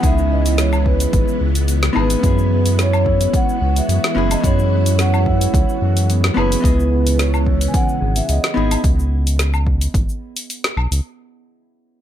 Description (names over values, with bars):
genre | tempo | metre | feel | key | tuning
sunset chillout | 109 BPM | 4/4 | straight | C# minor | A4 = 441 Hz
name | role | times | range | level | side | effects
vibraphone with soft mallets | melody | 0.0-8.8 s | B4 to G#5 | -24 LUFS | left 1 dB | ping-pong delay
vintage hollow-body jazz guitar | accompaniment | 0.0-8.8 s | B3 to D#5 | -23 LUFS | moving between left 4 dB and right 9 dB | auto-pan, tape echo
soft string machine | sustained chords | 0.0-8.8 s | C#3 to F#4 | -25 LUFS | equal | ensemble chorus
round analog bass | bass | 0.0-11.0 s | F#1 to F#2 | -17 LUFS | equal | tube saturation
deep house drum kit | drums | 0.0-11.0 s | hi-hat, shaker, snare drum, woodblock | -23 LUFS | left 1 dB | none
electronic kick drum | drums | 0.0-10.1 s | none | -18 LUFS | equal | none
concert harp | arpeggios | 2.5-11.4 s | B3 to G#4 | -28 LUFS | right 4 dB | tape echo
room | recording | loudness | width
light reverb | dark, warm production | -14 LUFS | side -11 dB against mid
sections
0.0-11.0 A section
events
none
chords
0.0 C#m7; 2.2 F#9sus4; 6.6 C#m7